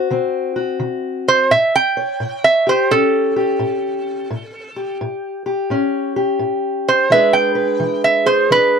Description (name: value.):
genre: acoustic country blues, solo or duo.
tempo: 86 BPM.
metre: 4/4.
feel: swing 64% on 8ths.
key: A mixolydian.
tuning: A4 = 440 Hz.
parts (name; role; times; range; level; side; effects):
fingerpicked steel-string acoustic guitar; accompaniment; 0.0-8.8 s; A2 to C#5; -18 LUFS; left 2 dB; none.
lap resonator guitar; melody; 1.3-8.8 s; A4 to G5; -14 LUFS; right 3 dB; none.
room: light reverb.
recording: dark, warm production.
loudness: -15 LUFS.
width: side -6 dB against mid.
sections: 0.0-8.8 A section.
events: none.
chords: 0.0 D7; 1.5 A7; 7.1 E7.